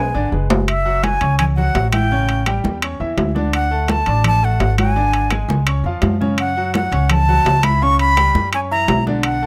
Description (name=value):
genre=latin, salsa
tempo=168 BPM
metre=4/4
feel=straight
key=unclear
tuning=A4 = 440 Hz
part: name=breathy bright concert flute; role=melody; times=0.0-9.5 s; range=E5 to C#6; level=-21 LUFS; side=equal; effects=none
part: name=bright upright piano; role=accompaniment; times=0.0-9.5 s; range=C#3 to D6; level=-27 LUFS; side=equal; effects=none
part: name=upright bass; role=bass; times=0.0-9.5 s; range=F#1 to F#2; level=-21 LUFS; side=equal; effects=none
part: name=congas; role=percussion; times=0.1-9.5 s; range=none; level=-25 LUFS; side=equal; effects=none
part: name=timbales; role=percussion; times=0.5-9.4 s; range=none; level=-24 LUFS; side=equal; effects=none
part: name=claves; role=percussion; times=0.7-9.4 s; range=none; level=-33 LUFS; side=equal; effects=none
room=small room ambience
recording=rough home demo mix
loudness=-17 LUFS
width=mono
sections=0.7-9.5 A section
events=drum fill 0.0-0.7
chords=0.0 E7 (rootless); 0.7 F#m9; 2.1 A7; 3.5 D; 5.0 G#sus4; 5.7 C#; 6.4 F#m7; 7.8 Gmaj7#11/C#; 8.5 F#7